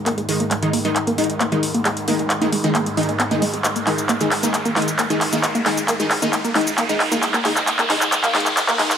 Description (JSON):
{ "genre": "driving peak-time techno", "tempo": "134 BPM", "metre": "4/4", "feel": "straight", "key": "unclear", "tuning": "A4 = 440 Hz", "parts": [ { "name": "deep dark ambient pad", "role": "drone", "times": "0.0-9.0 s", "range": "G#2 to D#3", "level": "-31 LUFS", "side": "equal", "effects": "chorus, built-in reverb" }, { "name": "riser", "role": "sound effects", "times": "0.0-9.0 s", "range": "none", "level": "-26 LUFS", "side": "right 2 dB", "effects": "none" }, { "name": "tight sequenced synth", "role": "riff", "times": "0.1-8.8 s", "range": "G#3 to G#4", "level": "-25 LUFS", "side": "right 1 dB", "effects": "chorus, tape echo" }, { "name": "techno drum kit", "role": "drums", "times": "0.1-9.0 s", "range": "handclaps, hi-hat, shaker", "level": "-21 LUFS", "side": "equal", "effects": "high-pass filter on snare, high-pass filter on hats, high-pass filter on perc" }, { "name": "rave stab", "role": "stabs", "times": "0.3-8.9 s", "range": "D#3 to D#4", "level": "-22 LUFS", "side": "left 1 dB", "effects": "chorus, built-in reverb, cassette tape, tape echo" } ], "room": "wet stone room reverb, RT60 1.1 s", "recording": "dry, gritty hardware recording, high-pass filter", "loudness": "-17 LUFS", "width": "side -8 dB against mid", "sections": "0.0-9.0 A section", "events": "build-up 0.0-9.0; drum fill 0.0-9.0; riser 0.0-9.0; filter sweep on synth arpeggio sound 0.0-9.0; filter sweep 0.0-9.0", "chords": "0.0 G#5" }